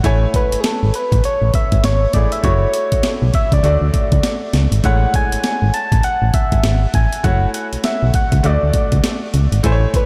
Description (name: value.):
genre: R&B, new jack swing.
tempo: 100 BPM.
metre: 4/4.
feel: swing 61% on 16ths.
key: A major.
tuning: A4 = 440 Hz.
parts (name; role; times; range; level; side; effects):
bright grand piano; accompaniment; 0.0-10.1 s; G#3 to G#5; -27 LUFS; equal; none.
solid FM bass; bass; 0.0-9.9 s; F#1 to D2; -18 LUFS; equal; none.
breakbeat sampler-style drum kit; drums; 0.0-10.1 s; hi-hat, kick drum, snare drum; -21 LUFS; equal; overdrive.
soft struck synth lead; melody; 0.4-10.1 s; G#4 to A5; -23 LUFS; equal; chorus, analog delay.
room: moderate huge ambient reverb, RT60 4.9 s.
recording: dreamy mix soaked in reverb.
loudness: -16 LUFS.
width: mono.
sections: 0.0-10.1 A section.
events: none.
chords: 0.0 Amaj7; 2.4 F#m7; 3.6 Dmaj7; 4.8 Amaj7; 7.2 F#m7; 8.4 Dmaj7.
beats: | 0.04 0.64 1.24 1.84 | 2.44 3.04 3.64 4.24 | 4.84 5.44 6.04 6.64 | 7.24 7.84 8.44 9.04 | 9.64.